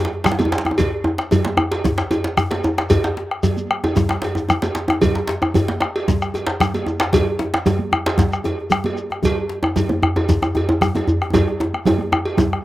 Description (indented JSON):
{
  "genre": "west african traditional, West African drum ensemble",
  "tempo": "114 BPM",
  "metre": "4/4",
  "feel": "straight",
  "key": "none",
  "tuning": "none",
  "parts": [
    { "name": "djembe", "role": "percussion", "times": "0.0-12.5 s", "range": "none", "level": "-20 LUFS", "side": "equal", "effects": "none" },
    { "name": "djembe", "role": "percussion", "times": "0.1-12.5 s", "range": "none", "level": "-24 LUFS", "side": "left 2 dB", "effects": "none" },
    { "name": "bombo", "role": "percussion", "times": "0.3-12.6 s", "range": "none", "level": "-22 LUFS", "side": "left 2 dB", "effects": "none" },
    { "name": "congas", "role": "percussion", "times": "0.3-12.5 s", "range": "none", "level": "-24 LUFS", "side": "right 5 dB", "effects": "none" },
    { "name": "shekere", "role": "percussion", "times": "0.3-12.5 s", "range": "none", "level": "-27 LUFS", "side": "equal", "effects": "none" },
    { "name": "cowbell", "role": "percussion", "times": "0.4-12.4 s", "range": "none", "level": "-24 LUFS", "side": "right 1 dB", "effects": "slapback echo" }
  ],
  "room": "light reverb",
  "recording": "recorded outdoors, with no room sound",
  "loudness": "-17 LUFS",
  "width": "side -15 dB against mid",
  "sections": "0.0-12.6 A section",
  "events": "drum fill 4.4-5.0, 11.3-12.6",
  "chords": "none",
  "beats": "0.25 | 0.78 1.31 1.84 2.38 | 2.90 3.44 3.96 4.49 | 5.02 5.55 6.08 6.61 | 7.13 7.66 8.19 8.71 | 9.24 9.77 10.29 10.82 | 11.34 11.87 12.39"
}